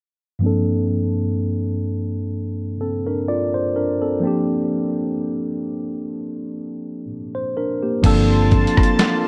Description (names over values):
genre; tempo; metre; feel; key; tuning
contemporary R&B; 63 BPM; 4/4; swing 54% on 16ths; unclear; A4 = 439 Hz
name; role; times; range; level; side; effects
mellow tine electric piano; accompaniment; 0.4-9.3 s; G2 to D5; -22 LUFS; equal; low-pass filter
chorused pulse-width pad; sustained chords; 8.0-9.3 s; Bb3 to C6; -26 LUFS; equal; none
vintage muted fingered electric bass; bass; 8.0-8.6 s; G1; -20 LUFS; equal; none
dusty soul sampler-style drum kit; drums; 8.0-9.2 s; crash cymbal, hi-hat, kick drum, rim click, snare drum; -20 LUFS; equal; overdrive
room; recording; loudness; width
moderate cathedral reverb, RT60 6.0 s; dreamy mix soaked in reverb; -21 LUFS; mono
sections
0.4-8.0 A section; 8.0-9.3 B section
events
filter sweep on tine electric piano 0.4-8.0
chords
0.4 Gm11; 4.2 Bb69; 8.0 Gm11